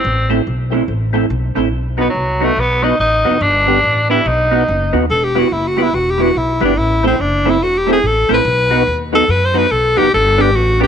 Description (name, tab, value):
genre	ska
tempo	143 BPM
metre	4/4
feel	swing 62% on 8ths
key	E minor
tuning	A4 = 438 Hz
part	raspy tenor saxophone	melody	0.0-4.9 s	F#3 to E4	-15 LUFS	equal	none
part	upright bass	bass	0.0-10.9 s	E1 to F#2	-19 LUFS	equal	none
part	electric guitar through a small old amp	accompaniment	0.3-10.9 s	F#3 to G4	-20 LUFS	right 12 dB	none
part	percussive tonewheel organ	stabs	0.3-10.9 s	B3 to C5	-21 LUFS	left 13 dB	chorus vibrato, slow rotary speaker
part	edgy alto saxophone	melody	5.1-10.9 s	C4 to C5	-14 LUFS	left 1 dB	none
room	light reverb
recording	1960s-style stereo with parts hard left and right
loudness	-12 LUFS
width	side -8 dB against mid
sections	0.0-5.1 A section; 5.1-10.9 B section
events	alto saxophone solo 5.1-10.9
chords	0.0 Am; 1.7 B; 3.4 G; 4.3 B; 5.1 Em; 6.8 Am; 8.5 B; 10.1 G